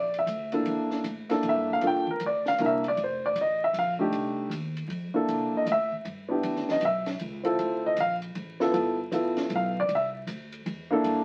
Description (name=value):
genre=jazz piano trio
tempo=156 BPM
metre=3/4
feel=swing 65% on 8ths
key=C mixolydian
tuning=A4 = 440 Hz
part: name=warm baby grand piano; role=melody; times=0.0-11.2 s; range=A3 to G5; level=-27 LUFS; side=equal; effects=none
part: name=upright bass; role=bass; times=0.0-11.2 s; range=F1 to C3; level=-40 LUFS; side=equal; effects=none
part: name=compact cocktail drum kit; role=drums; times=0.1-11.2 s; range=hi-hat, kick drum, ride cymbal, snare drum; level=-44 LUFS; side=equal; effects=none
room=moderate studio reverb, RT60 0.7 s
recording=very old 78 rpm record, vinyl crackle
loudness=-28 LUFS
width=mono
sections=0.0-11.2 A section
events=grand piano solo 0.0-11.2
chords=0.0 C13 (rootless); 1.8 Gm7; 2.6 C9; 3.0 F13; 5.3 C13; 6.4 Em7; 7.2 A; 7.6 Dm7; 8.7 G13; 9.9 C13